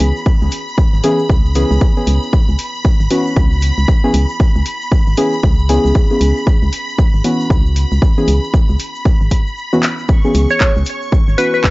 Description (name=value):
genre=deep house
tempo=116 BPM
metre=4/4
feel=swing 61% on 16ths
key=C# minor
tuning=A4 = 437 Hz
part: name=deep mellow chord stab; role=stabs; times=0.0-11.7 s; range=E3 to G#4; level=-17 LUFS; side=equal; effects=chorus, sidechain pumping, analog delay
part: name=organ-like FM bass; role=bass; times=0.0-11.7 s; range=G#1 to C#2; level=-14 LUFS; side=equal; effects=tube saturation, sidechain pumping
part: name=house drum kit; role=drums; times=0.0-11.7 s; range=handclaps, hi-hat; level=-21 LUFS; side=left 1 dB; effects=none
part: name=egg shaker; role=percussion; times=0.0-11.7 s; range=none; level=-40 LUFS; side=right 2 dB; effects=none
part: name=string machine, violins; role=texture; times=0.0-11.7 s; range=B5 to C#6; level=-25 LUFS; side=equal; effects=ensemble chorus, sidechain pumping
part: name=electronic kick drum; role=drums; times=0.3-11.7 s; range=none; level=-12 LUFS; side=equal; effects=none
part: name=glassy wavetable pluck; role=melody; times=10.5-11.6 s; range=B4 to C#5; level=-16 LUFS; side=equal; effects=chorus, analog delay
room=little or no reverb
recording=dry, gritty hardware recording, cassette tape, nothing above 7.7 kHz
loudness=-12 LUFS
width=side -21 dB against mid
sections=0.0-11.7 A section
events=break 9.6-10.1; drum fill 9.8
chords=0.0 C#m7